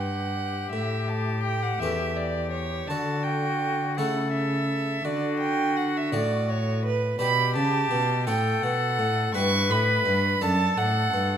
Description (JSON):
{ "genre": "classical, baroque-style sonata movement with continuo", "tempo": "56 BPM (dotted quarters)", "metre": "6/8", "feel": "straight", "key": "D major", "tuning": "A4 = 440 Hz", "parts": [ { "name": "warm oboe", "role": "melody", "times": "0.0-11.4 s", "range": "F#4 to B4", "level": "-30 LUFS", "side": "left 8 dB", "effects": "none" }, { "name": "rich violin", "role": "second line", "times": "0.0-11.4 s", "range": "B4 to C#6", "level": "-27 LUFS", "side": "right 6 dB", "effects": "none" }, { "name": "harpsichord", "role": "accompaniment", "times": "0.0-11.4 s", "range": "E2 to D5", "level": "-32 LUFS", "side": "left 1 dB", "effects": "none" }, { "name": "dark cello", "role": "bass", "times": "0.0-11.4 s", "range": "E2 to D3", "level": "-28 LUFS", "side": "equal", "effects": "none" } ], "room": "moderate recital hall reverb, RT60 1.4 s", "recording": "none", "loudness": "-23 LUFS", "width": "side -9 dB against mid", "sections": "0.0-11.4 A section", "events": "none", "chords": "0.0 G; 0.7 A7; 2.9 D; 4.0 A/C#; 5.0 D; 7.2 G/B; 8.3 F#m/A; 9.3 Em/G; 10.4 D/F#", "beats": "| 0.73 1.82 | 2.90 3.98 | 5.05 6.12 | 7.20 8.27 | 9.34 10.42" }